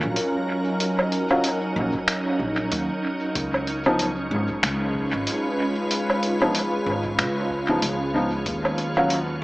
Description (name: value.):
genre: ambient dub.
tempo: 94 BPM.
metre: 4/4.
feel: swing 59% on 16ths.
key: unclear.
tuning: A4 = 439 Hz.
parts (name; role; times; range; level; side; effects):
soft additive organ-like pad; sustained chords; 0.0-9.4 s; Gb3 to Cb5; -24 LUFS; equal; ensemble chorus, built-in reverb.
upright bass; bass; 0.0-9.4 s; Ab1 to Eb2; -29 LUFS; equal; none.
lo-fi sampler-style drum kit; drums; 0.2-9.2 s; finger snaps, hi-hat, woodblock; -27 LUFS; equal; small room reverb, dub echo.
warm upright piano; stabs; 1.3-9.2 s; F3 to F4; -26 LUFS; equal; dub echo.
electronic kick drum; drums; 1.9-8.6 s; none; -42 LUFS; equal; none.
room: moderate spring reverb, RT60 2.5 s.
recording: echo-heavy mix, small speaker sound.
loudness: -21 LUFS.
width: side -20 dB against mid.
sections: 0.0-9.4 A section.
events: none.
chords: 0.0 Ebm7; 3.4 Db7; 8.5 Ebm7.